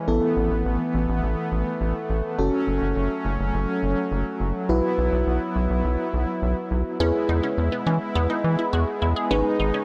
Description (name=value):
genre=synth-pop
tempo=104 BPM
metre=4/4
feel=straight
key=unclear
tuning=A4 = 441 Hz
part: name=mellow FM electric piano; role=accompaniment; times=0.0-9.8 s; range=B3 to B4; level=-29 LUFS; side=equal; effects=chorus
part: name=brassy analog pad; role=sustained chords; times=0.0-9.8 s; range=E3 to E4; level=-29 LUFS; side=equal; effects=chorus, tremolo
part: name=rubbery square bass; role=bass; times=0.1-9.7 s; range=F#1 to E3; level=-26 LUFS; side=equal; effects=tube saturation
part: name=resonant blip pluck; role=arpeggios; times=7.0-9.8 s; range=B3 to G#4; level=-31 LUFS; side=equal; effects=phaser, analog delay
room=light reverb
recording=dry, gritty hardware recording, lossy compression artefacts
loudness=-24 LUFS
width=mono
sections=0.0-7.0 A section; 7.0-9.8 B section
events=none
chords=0.1 Asus2; 2.4 F#m; 4.7 Bsus4; 7.0 E; 9.3 G#m